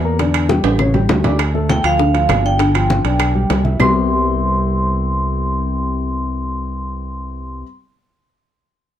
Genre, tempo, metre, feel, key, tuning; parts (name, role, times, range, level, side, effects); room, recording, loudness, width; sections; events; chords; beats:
Afro-Cuban jazz; 199 BPM; 4/4; straight; C major; A4 = 438 Hz
dark grand piano; accompaniment; 0.0-7.6 s; C3 to D6; -21 LUFS; left 3 dB
fingered electric bass; bass; 0.0-7.6 s; G1 to E2; -19 LUFS; equal
bongos; percussion; 0.2-3.9 s; -25 LUFS; left 7 dB
congas; percussion; 0.2-3.9 s; -21 LUFS; left 1 dB
timbales; percussion; 0.2-3.9 s; -23 LUFS; right 7 dB
claves; percussion; 0.3-3.9 s; -24 LUFS; right 4 dB
vibraphone with medium hard mallets; melody; 1.7-7.6 s; F5 to C6; -21 LUFS; right 2 dB; slapback echo, plate reverb
moderate studio ambience, RT60 0.5 s; dark, warm production; -14 LUFS; side -10 dB against mid
0.0-1.4 A section; 1.4-3.8 B section; 3.8-6.2 C section
drum fill 0.6-1.4
0.2 A7sus4; 0.8 A7; 1.4 Dm; 2.6 G7; 3.8 Cmaj7
| 0.19 0.49 0.79 1.09 | 1.40 1.70 2.00 2.30 | 2.60 2.90 3.20 3.50 | 3.80 4.10 4.40 4.71 | 5.01 5.31 5.61 5.91